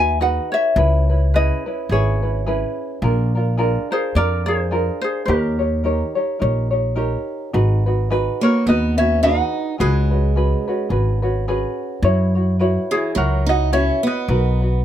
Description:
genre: Hawaiian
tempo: 106 BPM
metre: 4/4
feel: swing 56% on 8ths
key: G# minor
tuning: A4 = 439 Hz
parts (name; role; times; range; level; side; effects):
- ukulele; melody; 0.0-14.8 s; E4 to G#5; -20 LUFS; left 1 dB; none
- tenor ukulele; accompaniment; 0.0-14.8 s; C#4 to C#5; -23 LUFS; equal; none
- upright bass; bass; 0.0-14.8 s; G#1 to F#2; -18 LUFS; equal; none
- picked steel-string acoustic guitar; second line; 8.4-14.8 s; E3 to D#4; -22 LUFS; right 3 dB; none
room: little or no reverb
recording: close, detailed microphones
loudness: -16 LUFS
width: side -10 dB against mid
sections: 0.0-14.8 A section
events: none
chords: 0.0 G#m7; 0.8 C#m7; 3.0 A#7; 5.3 D#7; 7.5 G#m7; 9.8 C#7sus4; 12.0 F#7sus4; 14.3 Bmaj7

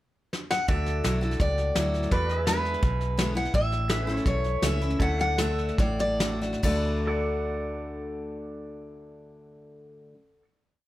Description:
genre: honky-tonk and classic country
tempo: 135-168 BPM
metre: 4/4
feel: straight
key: D major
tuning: A4 = 441 Hz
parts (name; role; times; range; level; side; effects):
- soft brush drum kit; drums; 0.3-6.7 s; crash cymbal, hi-hat, kick drum, snare drum; -29 LUFS; equal; none
- picked steel-string acoustic guitar; melody; 0.5-10.0 s; B4 to F#5; -29 LUFS; equal; none
- picked steel-string acoustic guitar; accompaniment; 0.7-10.2 s; E2 to F#4; -32 LUFS; left 1 dB; none
- pedal steel guitar; sustained chords; 0.7-10.4 s; F#4 to F#5; -35 LUFS; equal; none
- vintage muted fingered electric bass; bass; 0.7-10.0 s; A1 to E2; -29 LUFS; equal; none
room: moderate studio reverb, RT60 0.9 s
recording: none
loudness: -24 LUFS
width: side -15 dB against mid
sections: 0.0-0.7 pickup bar; 0.7-6.6 A section; 6.6-10.2 final chord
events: drum fill 0.3-0.7; slowing down 3.5-6.6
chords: 0.0 N.C.; 0.7 Dadd9; 2.1 E7; 3.5 A; 5.0 D

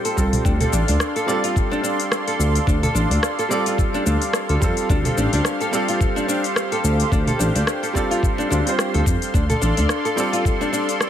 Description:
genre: organic downtempo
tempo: 108 BPM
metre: 4/4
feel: swing 57% on 16ths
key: D minor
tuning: A4 = 440 Hz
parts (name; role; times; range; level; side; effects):
- felt-muted upright piano; accompaniment; 0.0-11.1 s; G3 to C5; -26 LUFS; right 2 dB; sidechain pumping, ping-pong delay
- warm analog pad; sustained chords; 0.0-11.1 s; G4 to C6; -26 LUFS; equal; chorus, tremolo, sidechain pumping
- afro-pop drum kit; drums; 0.0-11.1 s; hi-hat, rim click, shaker, toms; -26 LUFS; left 1 dB; small room ambience
- bronze singing bowl; texture; 0.0-11.1 s; F5 to G5; -42 LUFS; left 5 dB; none
- flamenco guitar; arpeggios; 0.1-10.9 s; D4 to D5; -25 LUFS; left 1 dB; ping-pong delay
- smooth gliding synth bass; bass; 0.2-9.9 s; A1 to F2; -20 LUFS; equal; sidechain pumping
- electronic kick drum; drums; 0.2-10.6 s; none; -21 LUFS; equal; small room ambience
room: light reverb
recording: none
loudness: -17 LUFS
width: side -10 dB against mid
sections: 0.5-11.1 A section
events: none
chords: 0.5 Dm7

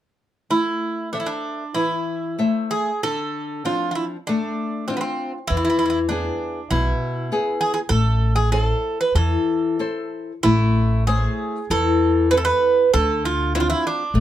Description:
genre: fado-style ballad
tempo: 96 BPM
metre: 4/4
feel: uneven beats, rubato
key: A harmonic minor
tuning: A4 = 443 Hz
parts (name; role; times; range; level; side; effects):
- Greek bouzouki; melody; 0.5-14.2 s; B3 to B4; -22 LUFS; right 3 dB; none
- nylon-string guitar; accompaniment; 0.5-14.2 s; B2 to E5; -24 LUFS; left 4 dB; none
- upright bass; bass; 5.5-14.2 s; A1 to E2; -21 LUFS; equal; none
room: moderate studio reverb, RT60 0.5 s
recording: none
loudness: -19 LUFS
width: side -12 dB against mid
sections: 0.5-10.4 A section; 10.4-14.2 B section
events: none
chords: 0.5 Am; 3.0 Dm7; 5.5 E; 7.9 Am; 12.9 Dm7

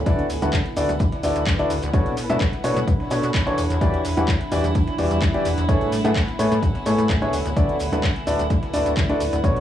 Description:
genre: piano house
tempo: 128 BPM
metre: 4/4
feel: straight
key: unclear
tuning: A4 = 440 Hz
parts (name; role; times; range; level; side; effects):
- dark studio string section; sustained chords; 0.0-9.6 s; E4 to F#5; -32 LUFS; right 1 dB; sidechain pumping, cassette tape
- plucky analog bass; bass; 0.0-9.6 s; D1 to B2; -25 LUFS; equal; sidechain pumping
- warbly tape-like pad; texture; 0.0-9.6 s; G3 to A5; -30 LUFS; equal; chorus, built-in reverb, phaser, sidechain pumping, cassette tape
- clear grand piano; riff; 0.1-9.6 s; B2 to F#5; -23 LUFS; left 1 dB; sidechain pumping, cassette tape, tape echo
- dusty soul sampler-style drum kit; drums; 0.1-9.6 s; hi-hat, snare drum; -44 LUFS; left 1 dB; none
- electronic kick drum; drums; 0.1-9.5 s; none; -23 LUFS; equal; cassette tape
- garage drum kit; drums; 0.1-9.6 s; handclaps, hi-hat, shaker; -31 LUFS; equal; overdrive, cassette tape
- tambourine and congas; percussion; 0.1-9.6 s; none; -36 LUFS; right 2 dB; none
room: light reverb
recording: home recording on cassette, small room ambience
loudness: -18 LUFS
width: side -11 dB against mid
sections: 0.0-9.6 A section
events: none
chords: 0.0 D69; 1.9 Bm9; 3.6 Em9; 5.7 Amaj9; 7.3 D69

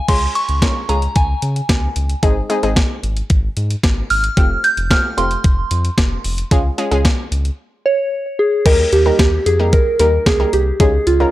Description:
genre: synth-pop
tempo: 112 BPM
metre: 4/4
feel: straight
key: unclear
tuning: A4 = 439 Hz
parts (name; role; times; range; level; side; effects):
- soft synth bell; melody; 0.0-11.3 s; F4 to G6; -16 LUFS; right 1 dB; chorus, analog delay
- analog pluck; accompaniment; 0.1-11.3 s; G3 to Bb4; -21 LUFS; left 1 dB; chorus
- round analog bass; bass; 0.1-11.3 s; F1 to Db3; -19 LUFS; equal; none
- clean 12-bit digital drum machine; drums; 0.1-11.2 s; crash cymbal, hi-hat, kick drum, snare drum; -16 LUFS; equal; none
room: little or no reverb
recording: dry, gritty hardware recording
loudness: -13 LUFS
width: side -15 dB against mid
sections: 0.1-8.7 A section; 8.7-11.3 B section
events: none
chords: 0.1 Db; 2.2 Ab; 4.4 Fadd9; 6.5 Db; 8.7 Eb; 10.8 Dbadd9

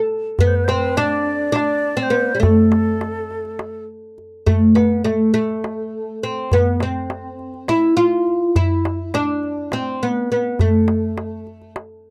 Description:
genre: Turkish makam ensemble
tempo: 206 BPM (eighths)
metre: 7/8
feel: straight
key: A makam ussak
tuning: A4 = 439 Hz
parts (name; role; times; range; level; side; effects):
- breathy bright ney; second line; 0.0-3.8 s; A4 to D5; -26 LUFS; equal; none
- oud; melody; 0.4-11.7 s; G3 to F4; -20 LUFS; equal; none
- darbuka; percussion; 0.4-11.9 s; none; -22 LUFS; equal; none
room: little or no reverb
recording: dry, close 1970s-style studio recording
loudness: -18 LUFS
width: mono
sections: 0.0-4.5 A section; 4.5-12.1 B section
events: none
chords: none

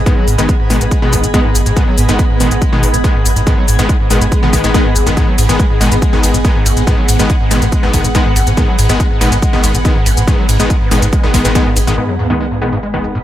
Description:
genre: driving peak-time techno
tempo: 141 BPM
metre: 4/4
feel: straight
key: G# minor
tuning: A4 = 440 Hz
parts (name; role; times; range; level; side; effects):
- saturated sub bass; bass; 0.0-12.0 s; G#1; -17 LUFS; equal; sidechain pumping, low-pass filter
- granular cloud pad; texture; 0.0-13.2 s; B3 to B5; -20 LUFS; right 1 dB; built-in reverb, sidechain pumping
- overdriven acid bass; riff; 0.1-13.2 s; G#1 to G#3; -18 LUFS; equal; distortion, lush chorus, cassette tape, sidechain pumping, tape echo
- supersaw stab; stabs; 0.1-13.1 s; D#3 to B3; -17 LUFS; left 2 dB; cassette tape, sidechain pumping, low-pass filter, tape echo
- electronic kick drum; drums; 0.1-11.6 s; none; -13 LUFS; equal; none
- techno drum kit; drums; 0.1-13.2 s; hi-hat, ride cymbal, shaker; -21 LUFS; left 1 dB; sidechain pumping on hats, low-pass filter on hats, sidechain pumping on perc, low-pass filter on perc, sidechain pumping on cymbals, low-pass filter on cymbals
- sub drop; sound effects; 12.0-13.2 s; none; -22 LUFS; equal; none
room: light reverb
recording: none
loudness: -10 LUFS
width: side -12 dB against mid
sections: 0.0-12.0 A section; 12.0-13.2 B section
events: drop 0.0-12.0; impact 12.0-13.2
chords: 0.0 G#m

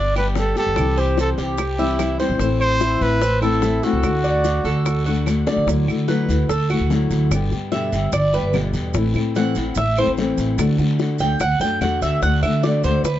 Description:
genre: latin, Cuban son and guajira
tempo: 147 BPM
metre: 4/4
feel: straight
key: unclear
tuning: A4 = 440 Hz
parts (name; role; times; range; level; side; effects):
- breathy trumpet; melody; 0.0-5.3 s; F#4 to D5; -23 LUFS; equal; none
- Cuban tres; arpeggios; 0.0-13.2 s; C4 to G5; -23 LUFS; right 2 dB; none
- upright bass; bass; 0.0-13.2 s; G1 to D3; -21 LUFS; right 1 dB; none
- fingerpicked steel-string acoustic guitar; accompaniment; 0.2-13.1 s; B2 to G4; -23 LUFS; left 4 dB; none
- bongos; percussion; 0.2-13.2 s; none; -27 LUFS; left 7 dB; none
- claves; percussion; 0.2-12.6 s; none; -34 LUFS; right 4 dB; none
- maracas; percussion; 0.2-13.2 s; none; -38 LUFS; right 9 dB; none
- guiro; percussion; 0.4-13.2 s; none; -36 LUFS; left 2 dB; none
room: light reverb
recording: dark, warm production, nothing above 7.7 kHz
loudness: -17 LUFS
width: side -12 dB against mid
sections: 0.0-5.7 A section; 5.7-13.2 B section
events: drum fill 5.3-5.7; Cuban tres solo 5.7-13.2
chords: 0.0 G; 0.8 C; 2.4 Am; 4.0 D; 5.7 Dadd9; 7.3 G; 9.0 Am; 10.6 D

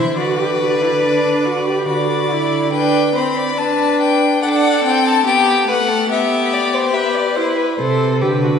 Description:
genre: classical, baroque-style fugue for string quartet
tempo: 71 BPM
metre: 3/4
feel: straight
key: G major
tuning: A4 = 439 Hz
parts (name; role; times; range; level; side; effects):
- clear violin; melody; 0.0-7.8 s; B4 to B5; -19 LUFS; left 7 dB; none
- rich violin; second line; 0.0-8.6 s; G4 to E5; -19 LUFS; left 2 dB; none
- rich viola; accompaniment; 0.0-8.5 s; A3 to A4; -19 LUFS; right 2 dB; none
- warm cello; bass; 0.0-2.7, 7.8-8.6 s; C3 to D3; -21 LUFS; right 3 dB; none
room: wet concert hall reverb, RT60 2.4 s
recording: heard from further back in the room, nothing above 11.0 kHz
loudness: -14 LUFS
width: side -7 dB against mid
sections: 0.0-2.7 A section; 2.7-7.8 B section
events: none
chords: 0.2 G/D; 1.9 D; 2.7 G; 7.8 C5

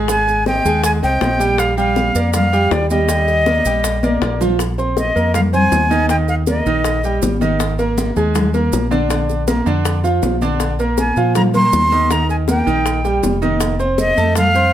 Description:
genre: latin, salsa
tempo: 160 BPM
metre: 4/4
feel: straight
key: unclear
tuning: A4 = 445 Hz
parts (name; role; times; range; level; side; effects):
- clear concert grand piano; accompaniment; 0.0-14.7 s; D3 to C6; -19 LUFS; right 3 dB; none
- deep dub fingered electric bass; bass; 0.0-14.7 s; F1 to Bb2; -20 LUFS; equal; none
- breathy bright concert flute; melody; 0.1-7.2, 11.0-14.7 s; D5 to C6; -17 LUFS; equal; none
- bongos; percussion; 0.1-14.7 s; none; -26 LUFS; left 7 dB; none
- congas; percussion; 0.1-14.7 s; none; -22 LUFS; left 2 dB; none
- maracas; percussion; 0.1-14.7 s; none; -30 LUFS; right 9 dB; none
room: moderate studio reverb, RT60 0.7 s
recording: none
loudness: -14 LUFS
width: side -11 dB against mid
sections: 0.0-4.6 A section; 4.6-14.7 B section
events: drum fill 4.0-4.6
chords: 0.1 Ab; 1.6 Bb6; 4.6 Bbsus2; 6.1 Eb; 7.6 Absus2; 9.1 Bb; 12.1 Eb; 13.6 F7

